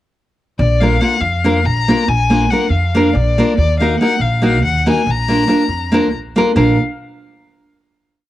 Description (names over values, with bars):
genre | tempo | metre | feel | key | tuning
balkan folk, Balkan wedding band | 282 BPM (eighths) | 7/8 | straight | unclear | A4 = 440 Hz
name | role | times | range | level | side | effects
rich violin | melody | 0.6-6.8 s | D5 to Bb5 | -18 LUFS | left 5 dB | cassette tape
upright bass | bass | 0.6-6.8 s | Bb1 to F2 | -17 LUFS | right 1 dB | none
nylon-string guitar | accompaniment | 0.8-6.8 s | Bb3 to Bb4 | -15 LUFS | equal | cassette tape
room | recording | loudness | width
light reverb | home recording on cassette | -12 LUFS | side -14 dB against mid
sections
0.6-6.6 A section; 6.6-8.1 final chord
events
none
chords
0.6 Bb; 3.6 Ebm; 5.1 Bb